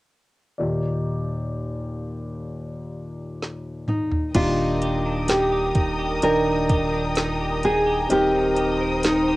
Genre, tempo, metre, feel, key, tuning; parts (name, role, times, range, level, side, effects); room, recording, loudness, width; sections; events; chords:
pop ballad; 64 BPM; 4/4; straight; Eb major; A4 = 439 Hz
warm grand piano; accompaniment; 0.6-9.4 s; Eb2 to G5; -26 LUFS; left 2 dB; cassette tape
smooth R&B drum kit; drums; 3.4-9.3 s; crash cymbal, hi-hat, kick drum, snare drum, toms; -24 LUFS; equal; cassette tape
nylon-string guitar; melody; 3.9-9.4 s; Eb4 to Bb4; -22 LUFS; equal
warm studio string section; sustained chords; 4.3-9.4 s; Bb4 to Eb6; -28 LUFS; left 1 dB; cassette tape
warm sub bass; bass; 4.3-9.4 s; Eb1; -32 LUFS; equal
clean electric guitar; arpeggios; 4.4-9.4 s; Eb3 to Bb4; -29 LUFS; right 3 dB; wide subtle chorus, cassette tape
moderate studio reverb, RT60 0.5 s; home recording on cassette; -20 LUFS; side -18 dB against mid
0.6-4.4 A section; 4.4-9.4 B section
drum fill 3.4-4.4
0.6 Ebmaj7; 8.1 Cm7/Eb